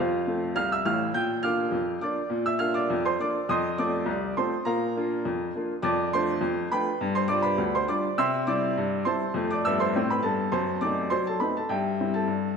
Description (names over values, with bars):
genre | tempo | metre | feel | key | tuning
ragtime piano | 102 BPM | 2/4 | straight | C major from 5.8 s | A4 = 440 Hz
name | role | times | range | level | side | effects
clear upright piano | solo | 0.0-12.6 s | A1 to G6 | -24 LUFS | equal | none
room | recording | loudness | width
moderate concert hall reverb, RT60 1.9 s | minimal, uncompressed stereo recording | -24 LUFS | side -6 dB against mid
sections
0.0-12.6 A section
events
none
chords
0.0 F; 1.1 Bb; 3.5 F7; 4.7 Bb; 5.8 Dm/F; 7.0 G7; 8.2 C; 9.3 F; 10.5 F#dim7; 11.7 C/G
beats
0.56 | 1.14 1.73 | 2.31 2.90 | 3.49 4.07 | 4.66 5.24 | 5.82 6.41 | 7.00 7.58 | 8.17 8.76 | 9.34 9.93 | 10.52 11.10 | 11.69 12.28